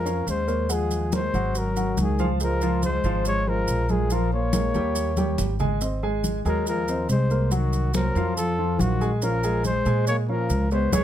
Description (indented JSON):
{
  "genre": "Afro-Cuban jazz",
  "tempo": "141 BPM",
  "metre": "4/4",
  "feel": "straight",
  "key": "Bb minor",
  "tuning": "A4 = 440 Hz",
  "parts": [
    { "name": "breathy trumpet", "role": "melody", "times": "0.0-11.0 s", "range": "Gb4 to Db5", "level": "-28 LUFS", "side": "left 1 dB", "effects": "none" },
    { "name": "breathy trombone", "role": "second line", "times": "0.0-11.0 s", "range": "Eb3 to Bb3", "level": "-30 LUFS", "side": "left 4 dB", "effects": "none" },
    { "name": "upright bass", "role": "bass", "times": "0.0-11.0 s", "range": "Ab1 to Bb2", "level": "-25 LUFS", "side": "equal", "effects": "none" },
    { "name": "warm concert grand piano", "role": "accompaniment", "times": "0.1-11.0 s", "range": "F3 to Ab5", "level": "-28 LUFS", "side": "equal", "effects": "none" },
    { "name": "congas", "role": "percussion", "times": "0.1-11.0 s", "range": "none", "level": "-30 LUFS", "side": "equal", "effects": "none" },
    { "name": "maracas", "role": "percussion", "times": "0.1-11.0 s", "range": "none", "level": "-35 LUFS", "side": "right 3 dB", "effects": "none" }
  ],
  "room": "little or no reverb",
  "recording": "close, detailed microphones",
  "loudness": "-21 LUFS",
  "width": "side -11 dB against mid",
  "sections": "0.0-11.0 A section",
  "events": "drum fill 5.2-5.8",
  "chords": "0.0 Bbm11; 0.7 Ebm11; 1.5 Ab13sus4; 2.4 Dbmaj7; 4.1 Bbm7; 5.0 Eb7; 5.8 Ab69; 7.5 Cm7b5; 8.4 F; 9.2 Bbm9",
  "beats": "0.27 | 0.69 1.12 1.55 1.97 | 2.40 2.83 3.25 3.68 | 4.11 4.53 4.96 5.38 | 5.81 6.24 6.66 7.09 | 7.52 7.94 8.37 8.79 | 9.22 9.65 10.07 10.50 | 10.93"
}